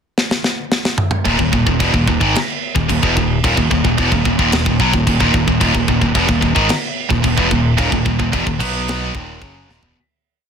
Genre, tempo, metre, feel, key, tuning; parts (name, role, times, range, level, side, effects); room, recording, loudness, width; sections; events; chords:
heavy metal; 110 BPM; 4/4; straight; Eb minor; A4 = 440 Hz
tight metal drum kit; drums; 0.2-10.0 s; crash cymbal, kick drum, snare drum, toms; -18 LUFS; equal
high-gain distorted guitar; riff; 1.3-10.0 s; Eb2 to B3; -16 LUFS; equal; distortion
modern bright picked electric bass; bass; 1.3-9.9 s; Eb1 to Cb2; -20 LUFS; equal
little or no reverb; dense, heavily limited modern master; -13 LUFS; side -7 dB against mid
0.0-1.3 pickup bar; 1.3-10.0 riff
drum fill 0.2-1.3, 9.7; fade-out 7.8-10.0
0.0 N.C.; 1.3 Eb5; 8.6 B5; 9.1 Ebm